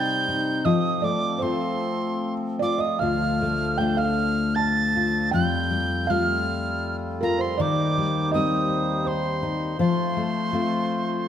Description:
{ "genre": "celtic folk, Celtic slow air", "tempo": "74-82 BPM", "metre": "3/4", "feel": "rubato", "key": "unclear", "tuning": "A4 = 440 Hz", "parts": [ { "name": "tin whistle", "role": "melody", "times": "0.0-11.3 s", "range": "Bb5 to A6", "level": "-27 LUFS", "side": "right 3 dB", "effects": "none" }, { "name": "felt-muted upright piano", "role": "second line", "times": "0.0-11.3 s", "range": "Bb4 to A5", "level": "-30 LUFS", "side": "right 8 dB", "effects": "none" }, { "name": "fingerpicked steel-string acoustic guitar", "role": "accompaniment", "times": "0.0-11.3 s", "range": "D2 to F4", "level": "-24 LUFS", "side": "left 4 dB", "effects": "none" }, { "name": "hand-pumped harmonium", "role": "sustained chords", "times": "0.0-11.3 s", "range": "Eb2 to C5", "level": "-33 LUFS", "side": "equal", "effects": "none" } ], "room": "wet recital hall reverb, RT60 1.6 s", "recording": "none", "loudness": "-21 LUFS", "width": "side -9 dB against mid", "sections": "0.0-11.3 A section", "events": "none", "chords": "0.0 Cm; 0.7 F; 3.0 Dm; 5.3 Fadd9; 7.6 Cm/Eb; 9.8 F" }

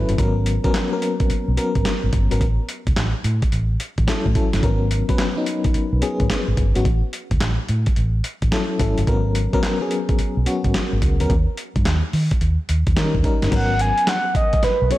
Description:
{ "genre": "R&B, new jack swing", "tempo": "108 BPM", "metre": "4/4", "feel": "swing 66% on 16ths", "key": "unclear", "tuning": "A4 = 441 Hz", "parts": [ { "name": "FM electric piano with tremolo", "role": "accompaniment", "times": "0.0-15.0 s", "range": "F#3 to B4", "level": "-23 LUFS", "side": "left 3 dB", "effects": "none" }, { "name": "vintage muted fingered electric bass", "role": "bass", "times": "0.0-14.9 s", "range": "G1 to D#3", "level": "-20 LUFS", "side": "equal", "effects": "none" }, { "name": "dusty soul sampler-style drum kit", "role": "drums", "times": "0.1-15.0 s", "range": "crash cymbal, handclaps, hi-hat, kick drum, snare drum", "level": "-21 LUFS", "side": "equal", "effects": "overdrive" }, { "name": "mellow horn-like synth lead", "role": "melody", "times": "13.5-15.0 s", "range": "B4 to G#5", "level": "-19 LUFS", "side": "right 1 dB", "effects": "chorus" } ], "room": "digital ambience", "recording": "none", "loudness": "-18 LUFS", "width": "side -16 dB against mid", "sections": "0.0-13.5 A section; 13.5-15.0 B section", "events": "none", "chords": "0.2 G#m11; 2.4 A6; 4.6 G#m11; 6.9 A6; 9.1 G#m11; 11.3 D#7; 13.5 G#m11" }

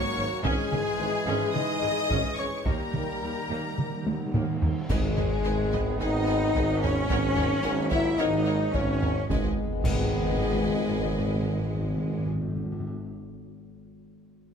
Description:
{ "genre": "cinematic, epic orchestral film score", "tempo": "109 BPM", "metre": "4/4", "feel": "straight", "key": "G# minor", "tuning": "A4 = 440 Hz", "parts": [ { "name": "warm studio violin section", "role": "melody", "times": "0.0-12.3 s", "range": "G#4 to D#6", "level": "-38 LUFS", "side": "left 2 dB", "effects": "none" }, { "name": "clear symphonic violin section", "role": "second line", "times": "0.0-12.3 s", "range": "G#4 to G#5", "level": "-36 LUFS", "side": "left 4 dB", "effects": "none" }, { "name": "mellow concert flute", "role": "second line", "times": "0.0-4.6 s", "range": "G#4 to D#5", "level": "-38 LUFS", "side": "left 3 dB", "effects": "none" }, { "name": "rich symphonic viola section", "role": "accompaniment", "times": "0.0-12.3 s", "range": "G3 to C#5", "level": "-37 LUFS", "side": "left 1 dB", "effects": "none" }, { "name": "bright trombone section", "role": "sustained chords", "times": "0.0-12.3 s", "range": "D#3 to B3", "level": "-37 LUFS", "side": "right 3 dB", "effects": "none" }, { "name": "mellow French horn section", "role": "sustained chords", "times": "0.0-12.3 s", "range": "G#3 to E4", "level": "-30 LUFS", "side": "left 5 dB", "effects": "none" }, { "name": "clear symphonic double bass section", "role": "bass", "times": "0.2-12.3 s", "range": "G#1 to D#2", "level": "-33 LUFS", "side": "right 3 dB", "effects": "none" }, { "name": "clear tuba", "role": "bass", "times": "0.2-12.3 s", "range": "G#1 to D#2", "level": "-35 LUFS", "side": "right 6 dB", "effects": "none" }, { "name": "rich symphonic cello section", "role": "bass", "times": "0.2-12.3 s", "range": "D#2 to E4", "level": "-35 LUFS", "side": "right 2 dB", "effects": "none" }, { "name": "taiko ensemble", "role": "drums", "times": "0.4-10.4 s", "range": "none", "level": "-30 LUFS", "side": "equal", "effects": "none" }, { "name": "cymbal swell, clash cymbals, concert bass drum and concert snare drum", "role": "percussion", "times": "2.7-6.0, 9.3-10.4 s", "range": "none", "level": "-34 LUFS", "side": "equal", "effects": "none" }, { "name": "timpani", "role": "percussion", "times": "2.7-5.7, 9.3-12.9 s", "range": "G#2 to D#3", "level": "-32 LUFS", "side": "equal", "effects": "none" } ], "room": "moderate scoring stage reverb, RT60 1.9 s", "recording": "none", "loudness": "-24 LUFS", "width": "side -7 dB against mid", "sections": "0.0-4.9 A section; 4.9-9.3 B section; 9.3-11.5 C section", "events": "timpani fill 2.7-4.9; drum fill 4.1-4.9; band accent 4.9-5.4, 9.3-9.9", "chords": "0.5 C#m/G#; 2.7 D#; 4.9 G#m; 7.1 F#/G#; 9.3 G#m" }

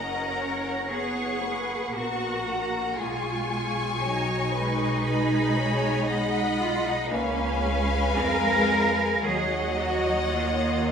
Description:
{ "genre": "classical, slow romantic movement for string orchestra", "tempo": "57 BPM", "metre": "4/4", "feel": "rubato", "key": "F# major", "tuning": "A4 = 439 Hz", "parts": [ { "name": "warm symphonic violin section", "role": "melody", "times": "0.0-10.9 s", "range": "F#5 to C#6", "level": "-33 LUFS", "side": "left 4 dB", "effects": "none" }, { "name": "warm symphonic violin section", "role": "second line", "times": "0.0-10.9 s", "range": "G#4 to G#5", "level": "-29 LUFS", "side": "left 2 dB", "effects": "none" }, { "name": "warm symphonic viola section", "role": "accompaniment", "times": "0.0-10.9 s", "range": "F#3 to C#4", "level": "-31 LUFS", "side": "equal", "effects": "none" }, { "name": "clear symphonic double bass section", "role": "bass", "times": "0.0-10.9 s", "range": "F#1 to E#2", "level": "-31 LUFS", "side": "right 2 dB", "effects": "none" }, { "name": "rich symphonic cello section", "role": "bass", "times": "0.0-10.9 s", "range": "C#4 to A#4", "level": "-28 LUFS", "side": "right 2 dB", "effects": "none" } ], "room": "wet recital hall reverb, RT60 1.5 s", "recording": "recorded in a church or concert hall", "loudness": "-23 LUFS", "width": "side -7 dB against mid", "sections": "0.0-10.9 A section", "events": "none", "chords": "0.0 F#; 3.0 G#m/B; 7.1 C#7; 9.3 D#m7" }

